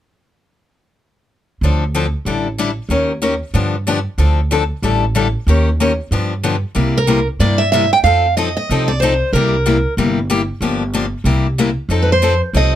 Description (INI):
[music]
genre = acoustic string swing (jazz manouche)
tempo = 187 BPM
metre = 4/4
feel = swing 61% on 8ths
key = unclear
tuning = A4 = 440 Hz
[part]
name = picked steel-string acoustic guitar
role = accompaniment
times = 1.6-12.7 s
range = C3 to Bb4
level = -18 LUFS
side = left 4 dB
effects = none
[part]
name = upright bass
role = bass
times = 1.6-12.8 s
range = G1 to G2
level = -17 LUFS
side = right 1 dB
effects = none
[part]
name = picked steel-string acoustic guitar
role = melody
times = 7.0-9.9, 12.0-12.7 s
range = Bb4 to G5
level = -15 LUFS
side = right 2 dB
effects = none
[sound]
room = light reverb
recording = close, detailed microphones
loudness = -14 LUFS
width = side -11 dB against mid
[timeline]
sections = 1.6-6.8 A section; 6.8-12.8 B section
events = none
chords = 1.6 Dm7; 2.3 A7sus4; 2.9 Eb7; 3.5 G7; 4.2 Dm7; 4.8 A7sus4; 5.5 Eb7; 6.1 G7; 6.8 C7; 8.0 F7; 9.3 C7; 10.6 Gm7; 11.3 C7; 11.9 F7